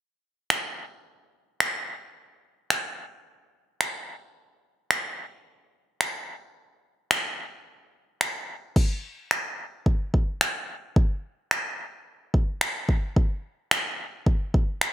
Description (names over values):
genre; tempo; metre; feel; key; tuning
pop; 109 BPM; 4/4; straight; none; none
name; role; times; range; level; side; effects
deep house drum kit; drums; 0.5-14.9 s; crash cymbal, finger snaps, kick drum; -23 LUFS; equal; gated reverb
room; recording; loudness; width
light reverb; bright 1980s-style digital production; -25 LUFS; side -14 dB against mid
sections
0.0-8.8 A section; 8.8-14.9 B section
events
none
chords
none